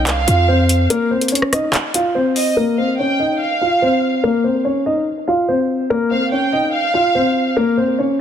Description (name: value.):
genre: hip hop, drill.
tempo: 144 BPM.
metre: 4/4.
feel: half-time.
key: unclear.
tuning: A4 = 439 Hz.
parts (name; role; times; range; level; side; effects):
dark concert grand piano; melody; 0.0-8.2 s; Bb3 to F5; -16 LUFS; left 1 dB; low-pass filter, digital delay.
dark studio violin section; second line; 0.0-7.5 s; Eb5 to G5; -20 LUFS; right 3 dB; digital delay.
hard-hitting 808-style bass; bass; 0.0-0.9 s; C2 to F2; -15 LUFS; equal; none.
drill drum kit; drums; 0.1-2.5 s; handclaps, hi-hat, rim click; -20 LUFS; equal; none.
room: light reverb, small room ambience.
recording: dense, heavily limited modern master.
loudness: -14 LUFS.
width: side -9 dB against mid.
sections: 0.0-2.6 A section; 2.6-8.2 B section.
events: break 0.9-2.6; filter sweep on grand piano 2.6-8.2.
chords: 0.0 F5; 0.9 Bbm.